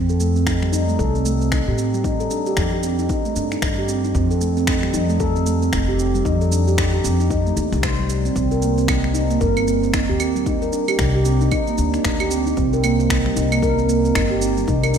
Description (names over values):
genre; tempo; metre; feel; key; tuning
organic downtempo; 114 BPM; 4/4; swing 60% on 16ths; unclear; A4 = 437 Hz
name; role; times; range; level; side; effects
handpan; arpeggios; 0.0-15.0 s; G3 to C5; -20 LUFS; right 2 dB; low-pass filter, digital delay
upright bass; bass; 0.0-15.0 s; F1 to A2; -21 LUFS; left 1 dB; none
electronic shaker, finger snaps and claves; drums; 0.1-15.0 s; none; -27 LUFS; right 1 dB; overdrive, studio reverb
electronic kick drum; drums; 0.5-14.8 s; none; -26 LUFS; left 1 dB; overdrive, studio reverb
room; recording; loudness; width
moderate lush hall reverb, RT60 2.0 s, small room ambience; rough home demo mix; -17 LUFS; side -7 dB against mid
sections
0.0-15.0 A section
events
none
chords
0.0 F; 8.4 Cmadd9